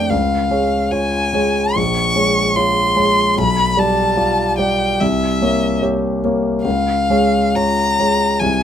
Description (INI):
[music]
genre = classical, romantic duo for violin and grand piano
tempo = 64-76 BPM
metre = 4/4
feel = rubato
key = unclear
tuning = A4 = 440 Hz
[part]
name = clear violin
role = melody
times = 0.0-8.6 s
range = E5 to Db6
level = -17 LUFS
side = left 2 dB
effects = none
[part]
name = warm concert grand piano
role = accompaniment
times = 0.0-8.6 s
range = Bb1 to D5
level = -16 LUFS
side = equal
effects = none
[sound]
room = light reverb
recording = close, detailed microphones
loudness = -14 LUFS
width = side -9 dB against mid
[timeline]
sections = 0.0-8.6 A section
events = none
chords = 0.1 Db; 1.8 Bbm7; 3.4 G7/B; 5.0 C7b9; 6.6 Db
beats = | 0.12 0.92 1.77 2.57 | 3.38 4.19 5.01 5.83 | 6.65 7.56 8.41